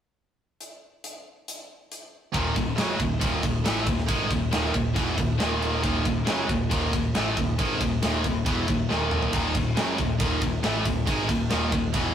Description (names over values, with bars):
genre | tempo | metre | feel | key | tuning
heavy metal | 138 BPM | 4/4 | straight | Eb phrygian | A4 = 436 Hz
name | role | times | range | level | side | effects
tight metal drum kit | drums | 0.6-12.0 s | crash cymbal, hi-hat, kick drum, ride cymbal, snare drum, toms | -27 LUFS | equal | none
distorted electric guitar | riff | 2.3-12.1 s | Eb2 to A3 | -29 LUFS | right 6 dB | overdrive
scooped high-gain guitar | riff | 2.3-12.1 s | Eb2 to A3 | -28 LUFS | left 5 dB | distortion
growling picked electric bass | bass | 2.3-12.1 s | Eb1 to A1 | -31 LUFS | equal | overdrive
room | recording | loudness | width
light reverb | rough rehearsal-room recording, warm saturation | -22 LUFS | side -9 dB against mid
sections
0.6-2.3 A section; 2.3-12.1 B section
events
drum fill 8.9-9.3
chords
0.6 N.C.; 2.3 Ebm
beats
| 0.60 1.03 1.47 1.91 | 2.34 2.78 3.22 3.65 | 4.09 4.53 4.96 5.40 | 5.84 6.27 6.71 7.15 | 7.58 8.02 8.46 8.89 | 9.33 9.77 10.20 10.64 | 11.07 11.51 11.94